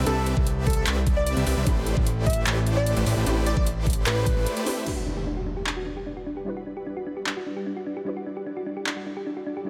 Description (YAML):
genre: future bass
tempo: 150 BPM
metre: 4/4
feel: half-time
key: E minor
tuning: A4 = 441 Hz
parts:
  - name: soft round pluck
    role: accompaniment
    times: 0.0-9.7 s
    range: G3 to B5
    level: -37 LUFS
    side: equal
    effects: ensemble chorus, sidechain pumping, digital delay
  - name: supersaw chords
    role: riff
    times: 0.0-4.9 s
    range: A3 to E5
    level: -32 LUFS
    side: equal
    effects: sidechain pumping, low-pass filter, digital delay
  - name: fat analog bass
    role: bass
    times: 0.0-4.5 s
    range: A1 to C2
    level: -27 LUFS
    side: equal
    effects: sidechain pumping
  - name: plucky unison lead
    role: melody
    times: 0.1-4.6 s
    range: A4 to E5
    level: -33 LUFS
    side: equal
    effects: subtle chorus, sidechain pumping, digital delay
  - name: big-room dance drum kit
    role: drums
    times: 0.1-8.9 s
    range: crash cymbal, handclaps, hi-hat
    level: -33 LUFS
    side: equal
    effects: overdrive
  - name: electronic kick drum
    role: drums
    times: 0.4-4.3 s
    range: none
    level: -27 LUFS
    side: equal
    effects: overdrive
  - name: ethereal airy pad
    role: sustained chords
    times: 5.8-9.7 s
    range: G3 to D5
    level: -42 LUFS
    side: equal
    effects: ensemble chorus, built-in reverb, tremolo, sidechain pumping
  - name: thumb-piano-like synth pluck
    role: arpeggios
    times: 4.9-9.7 s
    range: D4 to G4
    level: -34 LUFS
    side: equal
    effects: chorus, sidechain pumping, digital delay
  - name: impact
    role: sound effects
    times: 4.9-6.5 s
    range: none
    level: -37 LUFS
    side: equal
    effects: none
room: light reverb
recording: none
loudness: -26 LUFS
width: mono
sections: 0.0-4.9 A section; 4.9-9.7 B section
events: drop 0.0-4.9; break 4.5-4.9; impact 4.9-6.5; filter sweep on synth arpeggio sound 4.9-9.7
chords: 0.0 Cmaj9; 1.7 Am11; 4.9 Em9